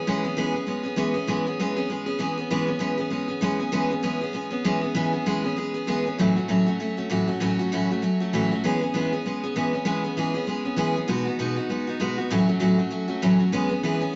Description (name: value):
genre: rock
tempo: 196 BPM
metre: 4/4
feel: swing 58% on 8ths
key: E major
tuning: A4 = 440 Hz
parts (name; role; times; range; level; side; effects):
- picked steel-string acoustic guitar; solo; 0.0-14.2 s; A2 to G#4; -25 LUFS; equal; none
room: moderate studio reverb, RT60 0.9 s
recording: nothing above 7.8 kHz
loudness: -25 LUFS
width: mono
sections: 0.0-1.3 A section; 1.3-14.2 B section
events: none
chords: 0.0 E6; 6.2 A6; 8.6 E6; 11.1 B6; 12.3 A6; 13.5 E6